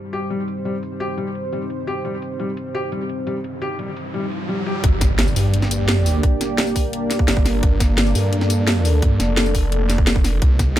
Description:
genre	dark technical drum and bass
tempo	172 BPM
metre	4/4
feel	straight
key	G minor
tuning	A4 = 440 Hz
part	dark analog pad	sustained chords	0.0-10.8 s	G3 to Eb5	-25 LUFS	equal	chorus, sidechain pumping
part	felt-muted upright piano	arpeggios	0.1-4.8 s	G3 to G4	-26 LUFS	left 2 dB	sidechain pumping, dub echo
part	drum and bass drum kit	drums	0.1-10.8 s	hi-hat, snare drum, tambourine	-22 LUFS	equal	overdrive, low-pass filter on hats, small room ambience, low-pass filter on perc, low-pass filter on snare
part	riser and impact	sound effects	3.5-6.2 s	none	-28 LUFS	equal	none
part	snarling distorted saw bass	bass	4.8-10.8 s	F1 to G2	-19 LUFS	equal	distortion, overdrive, sidechain pumping
part	electronic kick drum	drums	4.8-10.7 s	none	-17 LUFS	equal	overdrive, small room ambience
room	little or no reverb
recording	none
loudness	-17 LUFS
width	side -12 dB against mid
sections	0.0-4.8 A section; 4.8-10.8 B section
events	filter sweep on analog synth pad 0.0-4.8; riser 3.5-4.8; drop 4.8-10.8; impact 4.8-6.2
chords	0.0 Cm; 4.8 Gm

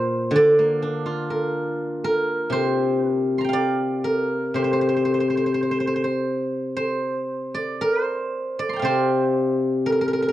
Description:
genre	chinese traditional, Chinese solo plucked strings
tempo	54-63 BPM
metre	4/4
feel	rubato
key	unclear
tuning	A4 = 441 Hz
part	steel-string zither	solo	0.0-10.3 s	Bb2 to C6	-20 LUFS	equal	none
room	light reverb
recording	dry, close 1970s-style studio recording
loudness	-20 LUFS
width	side -13 dB against mid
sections	0.0-10.3 A section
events	none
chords	none

